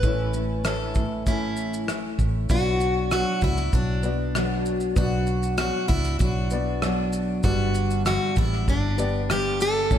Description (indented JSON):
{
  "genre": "acoustic pop",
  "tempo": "97 BPM",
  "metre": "4/4",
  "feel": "straight",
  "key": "B minor",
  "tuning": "A4 = 440 Hz",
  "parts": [
    { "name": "picked plugged-in steel-string acoustic guitar", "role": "melody", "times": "0.0-10.0 s", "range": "D4 to B4", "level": "-28 LUFS", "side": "equal", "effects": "slapback echo" },
    { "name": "dark upright piano", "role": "accompaniment", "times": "0.0-10.0 s", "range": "G3 to D5", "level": "-35 LUFS", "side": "left 4 dB", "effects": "none" },
    { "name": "fingerpicked steel-string acoustic guitar", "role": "accompaniment", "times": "0.0-10.0 s", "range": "G2 to G4", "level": "-28 LUFS", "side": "left 1 dB", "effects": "double-tracked left and right, slapback echo" },
    { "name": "vintage muted fingered electric bass", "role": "bass", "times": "0.0-10.0 s", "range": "G1 to C#2", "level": "-27 LUFS", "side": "equal", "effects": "none" },
    { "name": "natural country drum kit", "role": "drums", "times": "0.0-10.0 s", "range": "kick drum, rim click, shaker", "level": "-26 LUFS", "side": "equal", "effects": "none" }
  ],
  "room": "light reverb",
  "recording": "none",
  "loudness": "-21 LUFS",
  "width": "side -10 dB against mid",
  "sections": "0.0-2.5 A section; 2.5-10.0 B section",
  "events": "none",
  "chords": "0.0 A; 2.5 Bm; 7.4 G"
}